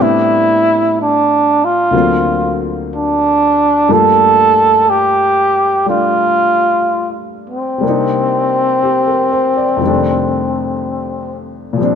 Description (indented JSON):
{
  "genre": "jazz",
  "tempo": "61 BPM",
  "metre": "4/4",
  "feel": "swing 66% on 8ths",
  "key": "unclear",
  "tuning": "A4 = 440 Hz",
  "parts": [
    { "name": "breathy trumpet", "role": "melody", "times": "0.0-11.4 s", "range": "C4 to A4", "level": "-12 LUFS", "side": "right 1 dB", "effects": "none" },
    { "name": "warm baby grand piano", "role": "accompaniment", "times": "0.0-12.0 s", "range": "D2 to D5", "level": "-18 LUFS", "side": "left 3 dB", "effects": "none" }
  ],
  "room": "moderate echo chamber reverb, RT60 1.9 s",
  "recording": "none",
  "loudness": "-11 LUFS",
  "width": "side -7 dB against mid",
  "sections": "0.0-12.0 A section",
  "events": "none",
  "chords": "0.0 Am11; 1.9 D7alt; 3.9 Gm9; 7.8 Cm7; 9.8 F13",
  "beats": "0.95 1.93 2.92 | 3.90 4.88 5.86 6.85 | 7.83 8.82 9.80 10.79 | 11.78"
}